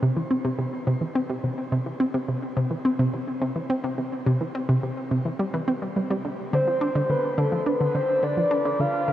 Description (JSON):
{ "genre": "ambient", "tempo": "106 BPM", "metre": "4/4", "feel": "straight", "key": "unclear", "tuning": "A4 = 438 Hz", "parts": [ { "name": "analog pluck", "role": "riff", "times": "0.0-9.1 s", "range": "C3 to D4", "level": "-24 LUFS", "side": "equal", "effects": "chorus, analog delay" }, { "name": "soft octave-layered synth lead", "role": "melody", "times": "6.5-9.1 s", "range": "A4 to F5", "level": "-23 LUFS", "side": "equal", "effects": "chorus, analog delay" } ], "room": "wet shimmer reverb, RT60 8.0 s", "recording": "worn, warbling old tape, cassette tape, warbly pitch drift", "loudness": "-22 LUFS", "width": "side -12 dB against mid", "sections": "0.0-9.1 A section", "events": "none", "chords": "0.0 C; 6.2 Dm" }